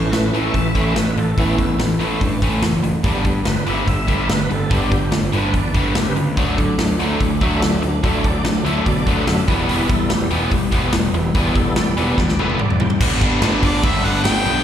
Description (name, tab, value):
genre	classic rock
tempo	144 BPM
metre	4/4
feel	straight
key	unclear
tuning	A4 = 440 Hz
part	tonewheel organ	sustained chords	0.0-14.6 s	E3 to G5	-24 LUFS	right 1 dB	slow rotary speaker, overdrive, chorus vibrato
part	crunchy overdriven guitar	riff	0.0-14.6 s	G2 to D4	-20 LUFS	equal	slapback echo
part	fuzz picked electric bass	bass	0.0-14.6 s	E1 to D3	-22 LUFS	equal	overdrive
part	big rock drum kit	drums	0.1-14.6 s	crash cymbal, hi-hat, kick drum, snare drum, toms	-20 LUFS	equal	none
part	clear harmonica	melody	13.6-14.6 s	D5 to G5	-21 LUFS	equal	slapback echo
room	light reverb, small room ambience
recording	live gig heard through the venue's PA, recital hall reverb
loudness	-15 LUFS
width	side -10 dB against mid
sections	0.0-13.0 A section; 13.0-14.6 B section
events	tonewheel organ solo 0.0-13.0; drum fill 12.2-13.0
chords	0.0 A; 3.0 G; 6.4 D; 9.5 Em; 13.0 G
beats	0.12 0.54 0.96 | 1.38 1.79 2.21 2.62 | 3.04 3.46 3.87 4.29 | 4.71 5.12 5.54 5.95 | 6.37 6.79 7.20 7.62 | 8.03 8.45 8.86 9.28 | 9.69 10.11 10.52 10.94 | 11.35 11.77 12.18 12.60 | 13.01 13.43 13.84 14.25